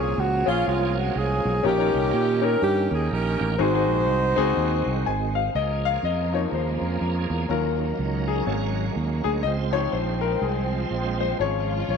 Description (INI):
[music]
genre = gospel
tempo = 123 BPM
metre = 4/4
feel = swing 60% on 8ths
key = Db major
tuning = A4 = 440 Hz
[part]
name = warm saxophone section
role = melody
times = 0.0-5.0 s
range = Ab3 to C5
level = -24 LUFS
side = right 2 dB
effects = tape echo
[part]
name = clear concert grand piano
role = accompaniment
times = 0.0-12.0 s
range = Ab2 to Ab5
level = -26 LUFS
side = left 11 dB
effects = none
[part]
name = bright tonewheel organ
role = sustained chords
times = 0.0-12.0 s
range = Eb3 to Db5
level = -32 LUFS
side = right 12 dB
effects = chorus vibrato, slow rotary speaker
[part]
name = fingered electric bass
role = bass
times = 0.0-12.0 s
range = Ab1 to Bb2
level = -26 LUFS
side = right 2 dB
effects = none
[part]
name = dark studio string section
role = sustained chords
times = 5.5-12.0 s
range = Eb3 to F4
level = -32 LUFS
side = left 1 dB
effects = none
[sound]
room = moderate echo chamber reverb, RT60 1.6 s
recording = 1960s-style stereo with parts hard left and right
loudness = -21 LUFS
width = side -6 dB against mid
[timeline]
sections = 0.0-5.5 A section; 5.5-12.0 B section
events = grand piano fill 4.8-5.5; grand piano solo 5.5-12.0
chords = 0.0 Bbm7; 1.6 Eb7/Bb; 3.6 Ab7; 5.5 Db6; 7.5 Ebm7; 8.5 Ab9sus4; 9.5 Dbmaj7; 11.4 Db/Ab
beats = 0.18 0.67 1.16 | 1.64 2.13 2.62 3.11 | 3.60 4.08 4.57 5.06 | 5.55 6.04 6.52 7.01 | 7.50 7.99 8.48 8.97 | 9.46 9.94 10.43 10.92 | 11.41 11.90